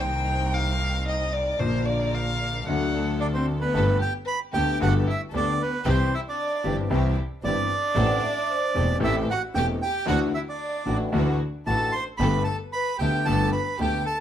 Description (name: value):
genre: tango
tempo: 113 BPM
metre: 4/4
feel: rubato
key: G major from 3.7 s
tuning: A4 = 441 Hz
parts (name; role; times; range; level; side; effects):
- rich violin; second line; 0.0-14.2 s; B3 to G5; -31 LUFS; left 2 dB; tape echo
- warm concert grand piano; accompaniment; 0.0-14.0 s; E1 to G4; -26 LUFS; left 2 dB; none
- warm studio string section; stabs; 0.0-14.0 s; B3 to Bb4; -35 LUFS; equal; none
- clear double bass; bass; 0.0-14.0 s; E1 to D2; -27 LUFS; right 1 dB; none
- bandoneon; melody; 3.2-14.2 s; B4 to C6; -27 LUFS; right 4 dB; none
- vibraphone with soft mallets; second line; 8.0-8.9 s; C5 to F#5; -32 LUFS; equal; none
room: moderate studio reverb, RT60 0.7 s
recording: lossy compression artefacts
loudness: -22 LUFS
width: side -10 dB against mid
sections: 0.0-3.7 A section; 3.7-14.2 B section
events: violin solo 0.0-3.7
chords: 0.0 Cm7; 1.6 Bb; 2.7 D; 3.7 Gadd9; 5.9 C; 8.0 Am7; 10.1 Dadd9; 12.2 Gadd9